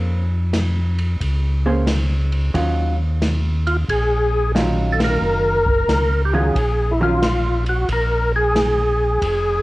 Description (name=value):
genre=soul jazz organ trio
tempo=90 BPM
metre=4/4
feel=swing 66% on 8ths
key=unclear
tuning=A4 = 440 Hz
part: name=vintage hollow-body jazz guitar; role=accompaniment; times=0.0-7.2 s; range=Eb3 to C5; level=-22 LUFS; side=right 1 dB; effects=cassette tape
part: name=mellow tonewheel organ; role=bass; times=0.0-9.6 s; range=F1 to F2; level=-20 LUFS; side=equal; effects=slow rotary speaker
part: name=open jazz drum kit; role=drums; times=0.5-9.4 s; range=hi-hat, kick drum, ride cymbal, snare drum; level=-26 LUFS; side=equal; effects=cassette tape
part: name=percussive tonewheel organ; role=melody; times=3.7-9.6 s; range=E4 to Bb4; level=-19 LUFS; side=equal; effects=slow rotary speaker, overdrive, chorus vibrato
room=small room ambience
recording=home recording on cassette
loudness=-16 LUFS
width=side -19 dB against mid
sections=0.0-9.6 A section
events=band accent 4.9-5.2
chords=0.0 Bbm9; 2.5 Ebm9; 7.9 Bb7(no3)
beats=0.54 1.21 1.88 | 2.55 3.21 3.88 4.55 | 5.22 5.89 6.56 7.22 | 7.89 8.56 9.23